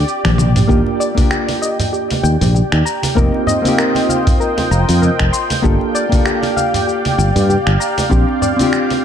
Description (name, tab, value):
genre	sunset chillout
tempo	97 BPM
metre	4/4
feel	swing 57% on 16ths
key	Bb major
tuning	A4 = 440 Hz
part	hollow-body jazz guitar	accompaniment	0.0-9.0 s	Bb3 to A4	-20 LUFS	left 1 dB	auto-pan, digital delay
part	lush unison pad	sustained chords	0.0-9.0 s	F4 to G5	-20 LUFS	right 1 dB	chorus
part	fretless electric bass	bass	0.0-8.2 s	F1 to G2	-14 LUFS	equal	tube saturation, analog chorus
part	dusty soul sampler-style drum kit	drums	0.1-9.0 s	finger snaps, hi-hat, shaker, toms	-21 LUFS	left 1 dB	none
part	electronic kick drum	drums	0.2-8.3 s	none	-16 LUFS	equal	none
part	soft round pluck	arpeggios	0.7-8.9 s	G4 to C6	-22 LUFS	left 2 dB	chorus, digital delay
part	congas	percussion	0.9-9.0 s	none	-23 LUFS	right 2 dB	none
room	moderate lush hall reverb, RT60 1.6 s, digital ambience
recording	dark, warm production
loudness	-12 LUFS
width	side -8 dB against mid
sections	0.0-9.0 A section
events	drum fill 0.2-0.7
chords	0.0 Bb6; 0.7 Ebmaj7; 3.2 F7sus4; 5.6 Gm7; 8.1 Bb6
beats	0.07 | 0.69 1.31 1.93 2.54 | 3.16 3.78 4.40 5.02 | 5.64 6.26 6.88 7.49 | 8.11 8.73